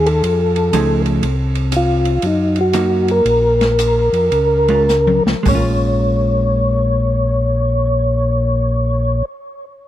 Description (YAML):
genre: soul jazz organ trio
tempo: 103-121 BPM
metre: 4/4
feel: swing 66% on 8ths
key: Bb minor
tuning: A4 = 442 Hz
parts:
  - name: percussive tonewheel organ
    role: melody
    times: 0.0-9.3 s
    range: Eb4 to Db5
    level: -17 LUFS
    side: left 1 dB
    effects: slow rotary speaker, chorus vibrato, tape echo
  - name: tonewheel organ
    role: bass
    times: 0.0-9.2 s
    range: Bb1 to Gb2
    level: -17 LUFS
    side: equal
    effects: slow rotary speaker
  - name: open jazz drum kit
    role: drums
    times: 0.1-5.6 s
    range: hi-hat, kick drum, ride cymbal, rim click, snare drum, toms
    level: -23 LUFS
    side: equal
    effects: none
  - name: vintage hollow-body jazz guitar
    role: accompaniment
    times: 0.7-9.4 s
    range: F3 to G#4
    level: -20 LUFS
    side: right 3 dB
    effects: none
room: light reverb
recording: dry, close 1970s-style studio recording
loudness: -13 LUFS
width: side -12 dB against mid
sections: 0.0-1.2 A section; 1.2-5.5 B section; 5.5-9.9 C section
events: slowing down 1.2-5.5; drum fill 4.9-5.5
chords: 0.2 F7#9; 1.2 Cm7b5; 3.3 Bbm; 5.5 Bbm7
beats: 0.24 0.73 | 1.23 1.73 2.23 2.74 | 3.25 3.78 4.32 4.88 | 5.45 6.04 6.62 7.20 | 7.79 8.37 8.95